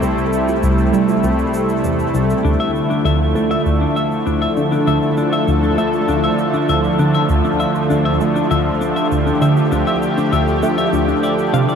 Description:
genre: ambient, sequencer-driven space music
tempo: 99 BPM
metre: 4/4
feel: straight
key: D minor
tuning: A4 = 439 Hz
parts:
  - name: lush unison pad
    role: sustained chords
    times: 0.0-11.8 s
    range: C3 to A4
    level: -16 LUFS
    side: equal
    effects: chorus
  - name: tight sequenced synth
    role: riff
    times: 0.0-11.7 s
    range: C2 to A3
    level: -19 LUFS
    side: equal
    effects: chorus, phaser, cassette tape, tape echo
  - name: fat analog bass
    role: bass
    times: 0.0-2.4 s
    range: C2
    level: -31 LUFS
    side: left 1 dB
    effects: none
  - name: shaker and bongos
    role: percussion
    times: 0.0-11.8 s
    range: none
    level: -38 LUFS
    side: right 1 dB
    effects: overdrive, tape echo
  - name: bubbling stepped-filter texture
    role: texture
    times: 0.0-11.8 s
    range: C4 to D5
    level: -34 LUFS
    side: left 2 dB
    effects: none
  - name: clean electric guitar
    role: arpeggios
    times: 2.4-11.8 s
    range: D4 to F5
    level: -22 LUFS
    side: left 4 dB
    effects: auto-pan, tape echo
room: wet huge ambient reverb, RT60 8.2 s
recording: dreamy mix soaked in reverb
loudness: -14 LUFS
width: side -7 dB against mid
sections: 0.0-2.4 A section; 2.4-11.8 B section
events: fade-in on drum 2.4-11.8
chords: 0.0 C6; 2.4 Dmadd9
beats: | 0.02 0.63 1.24 1.84 | 2.45 3.05 3.66 4.27 | 4.87 5.48 6.08 6.69 | 7.30 7.90 8.51 9.11 | 9.72 10.33 10.93 11.54

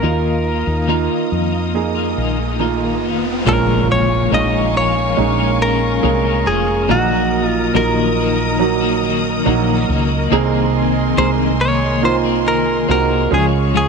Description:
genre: pop ballad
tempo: 70 BPM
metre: 4/4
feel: straight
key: Bb minor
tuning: A4 = 440 Hz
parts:
  - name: direct-recorded clean electric guitar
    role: melody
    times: 0.0-13.9 s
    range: Gb4 to Eb5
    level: -20 LUFS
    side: left 1 dB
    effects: none
  - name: clear grand piano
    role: accompaniment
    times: 0.0-13.9 s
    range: Bb2 to Ab4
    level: -18 LUFS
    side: right 11 dB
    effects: none
  - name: warm symphonic string section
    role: sustained chords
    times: 0.0-13.9 s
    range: Ab4 to Eb6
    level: -25 LUFS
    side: left 2 dB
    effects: none
  - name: twelve-string electric guitar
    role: arpeggios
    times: 0.0-13.9 s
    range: Bb2 to Ab4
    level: -22 LUFS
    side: left 15 dB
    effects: tremolo
  - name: woody fretless electric bass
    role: bass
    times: 0.0-13.9 s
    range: F1 to F2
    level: -20 LUFS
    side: left 1 dB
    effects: none
  - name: riser and impact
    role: sound effects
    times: 1.9-6.9 s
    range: none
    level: -27 LUFS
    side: left 2 dB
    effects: none
room: light reverb, studio ambience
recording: 1960s-style stereo with parts hard left and right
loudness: -14 LUFS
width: side -5 dB against mid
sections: 0.0-3.5 A section; 3.5-13.9 B section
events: riser 1.9-3.5; impact 3.5-6.9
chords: 0.0 Ebsus2; 3.5 Bbm7; 6.9 Ebm/Bb; 10.3 Abadd9/C; 13.3 Bbm7 (rootless)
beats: | 0.03 0.89 1.75 2.60 | 3.46 4.32 5.17 6.03 | 6.89 7.75 8.60 9.46 | 10.32 11.18 12.03 12.89 | 13.75

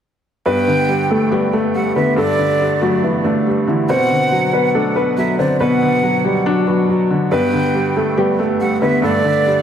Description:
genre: hip hop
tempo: 140 BPM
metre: 4/4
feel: half-time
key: G major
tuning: A4 = 440 Hz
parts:
  - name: dark concert grand piano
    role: melody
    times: 0.5-9.4 s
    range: D3 to C5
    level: -17 LUFS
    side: left 1 dB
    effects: diffuse ambient delay
  - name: breathy jazz flute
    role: second line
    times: 0.5-9.6 s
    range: D5 to G5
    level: -20 LUFS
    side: right 2 dB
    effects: diffuse ambient delay
  - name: felt-muted upright piano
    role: accompaniment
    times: 0.5-9.6 s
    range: G2 to D4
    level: -18 LUFS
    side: equal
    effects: none
room: wet plate reverb, RT60 2.5 s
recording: dreamy mix soaked in reverb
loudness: -14 LUFS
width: side -8 dB against mid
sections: 0.5-9.6 A section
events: none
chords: 0.5 Gadd9; 3.9 Bm; 7.3 Gadd9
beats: | 0.46 0.89 1.32 1.75 | 2.17 2.60 3.03 3.46 | 3.89 4.32 4.75 5.17 | 5.60 6.03 6.46 6.89 | 7.32 7.75 8.18 8.60 | 9.03 9.46

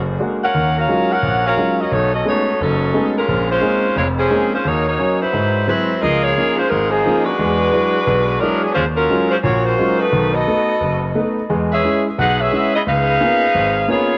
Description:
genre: jazz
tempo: 175 BPM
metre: 4/4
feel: swing 63% on 8ths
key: Bb minor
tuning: A4 = 439 Hz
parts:
  - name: clear saxophone section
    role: melody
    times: 0.0-14.2 s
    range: F3 to Gb5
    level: -19 LUFS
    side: equal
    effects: dub echo
  - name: clear grand piano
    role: accompaniment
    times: 0.0-14.1 s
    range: F1 to F#4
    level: -22 LUFS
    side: equal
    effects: none
room: moderate spring reverb, RT60 1.2 s, studio reverb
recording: echo-heavy mix, cassette tape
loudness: -17 LUFS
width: mono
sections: 0.0-6.0 A section; 6.0-14.2 B section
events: none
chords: 0.0 Bb7alt; 0.5 Ebm11; 1.9 B13; 3.3 Bbm11; 4.7 Ebm7; 5.3 Ab7alt; 6.0 Db69; 7.4 E9; 8.8 Ebm11; 10.1 Cb7; 11.5 E6; 12.9 Db13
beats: 0.20 | 0.54 0.88 1.23 1.57 | 1.91 2.25 2.60 2.94 | 3.28 3.62 3.97 4.31 | 4.65 4.99 5.33 5.68 | 6.02 6.36 6.70 7.05 | 7.39 7.73 8.07 8.42 | 8.76 9.10 9.44 9.79 | 10.13 10.47 10.81 11.15 | 11.49 11.84 12.18 12.52 | 12.86 13.21 13.55 13.89

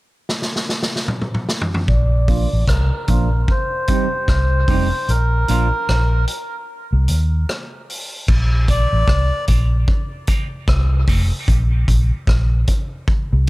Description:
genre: dub reggae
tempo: 75 BPM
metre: 4/4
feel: swing 60% on 16ths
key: Bb major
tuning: A4 = 440 Hz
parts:
  - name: vintage drum kit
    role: drums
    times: 0.3-13.5 s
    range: crash cymbal, hi-hat, kick drum, rim click, snare drum, toms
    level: -20 LUFS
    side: equal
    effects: none
  - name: melodica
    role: melody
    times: 1.9-9.5 s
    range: Bb4 to D5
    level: -24 LUFS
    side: equal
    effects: low-pass filter, dub echo
  - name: vintage muted fingered electric bass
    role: bass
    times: 1.9-13.5 s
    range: F1 to Eb2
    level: -16 LUFS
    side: equal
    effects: none
  - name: semi-hollow electric guitar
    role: accompaniment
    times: 2.3-11.3 s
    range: F3 to G4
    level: -27 LUFS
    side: right 5 dB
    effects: high-pass filter, low-pass filter, dub echo
room: small room reverb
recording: none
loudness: -15 LUFS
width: side -20 dB against mid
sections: 0.0-1.9 A section; 1.9-8.3 B section; 8.3-13.5 C section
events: drum fill 0.3-1.9; filter sweep 1.9-8.3; break 5.1-8.3; filter sweep on clean electric guitar 5.1-11.5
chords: 0.0 N.C.; 1.9 Bb; 3.5 Cm; 5.1 Bb5; 6.7 Cm; 8.3 Bb; 9.9 Cm; 11.5 N.C.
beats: 0.28 1.08 | 1.88 2.68 3.48 4.28 | 5.08 5.88 6.68 7.48 | 8.28 9.08 9.88 10.68 | 11.48 12.28 13.08

